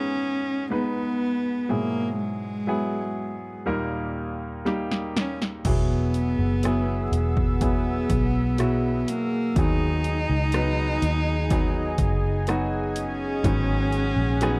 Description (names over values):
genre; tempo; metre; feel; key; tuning
pop ballad; 62 BPM; 4/4; straight; unclear; A4 = 439 Hz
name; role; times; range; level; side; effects
warm cello; melody; 0.0-14.6 s; G#3 to D#4; -30 LUFS; equal; slapback echo
clear concert grand piano; accompaniment; 0.0-14.6 s; D#2 to B4; -31 LUFS; equal; none
house drum kit; drums; 4.7-14.6 s; crash cymbal, hi-hat, kick drum, rim click, snare drum; -29 LUFS; equal; none
warm analog pad; sustained chords; 6.0-14.6 s; G#4 to E6; -36 LUFS; equal; chorus
vintage muted fingered electric bass; bass; 5.6-14.6 s; E1 to D#2; -28 LUFS; equal; none
room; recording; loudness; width
digital ambience; dry, close 1970s-style studio recording; -25 LUFS; mono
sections
0.0-5.7 A section; 5.7-14.6 B section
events
drum fill 4.7-5.7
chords
0.0 G#m; 1.7 Eadd9/G#; 3.7 D#; 5.7 Eadd9; 9.6 B6; 13.4 G#m7